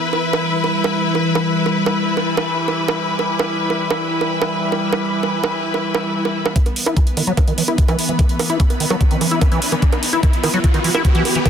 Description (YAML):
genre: psychedelic trance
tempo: 147 BPM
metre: 4/4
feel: straight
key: E minor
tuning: A4 = 440 Hz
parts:
  - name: evolving wavetable pad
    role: sustained chords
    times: 0.0-11.5 s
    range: E3 to B3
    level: -23 LUFS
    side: equal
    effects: phaser, built-in reverb, sidechain pumping
  - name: rich studio string section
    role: texture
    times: 0.0-11.5 s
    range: B3 to B5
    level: -22 LUFS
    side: left 2 dB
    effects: sidechain pumping
  - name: electronic bongos and hi-hat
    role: drums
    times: 0.1-11.5 s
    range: none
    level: -23 LUFS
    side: right 5 dB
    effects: overdrive
  - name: liquid acid bass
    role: riff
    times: 6.6-11.5 s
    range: D#3 to E4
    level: -20 LUFS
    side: left 1 dB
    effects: chorus, auto-pan, sidechain pumping, dub echo
  - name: electronic kick drum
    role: drums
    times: 6.6-11.5 s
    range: none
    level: -15 LUFS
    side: equal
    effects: overdrive
  - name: riser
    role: sound effects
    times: 8.0-11.5 s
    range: none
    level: -26 LUFS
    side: equal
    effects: none
room: moderate lush hall reverb, RT60 2.1 s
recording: dense, heavily limited modern master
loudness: -15 LUFS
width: side -8 dB against mid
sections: 0.0-6.6 A section; 6.6-11.5 B section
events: build-up 6.6-11.5; filter sweep on acid bass 6.6-11.5; riser 8.0-11.5; drum fill 9.8-11.5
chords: 0.0 E5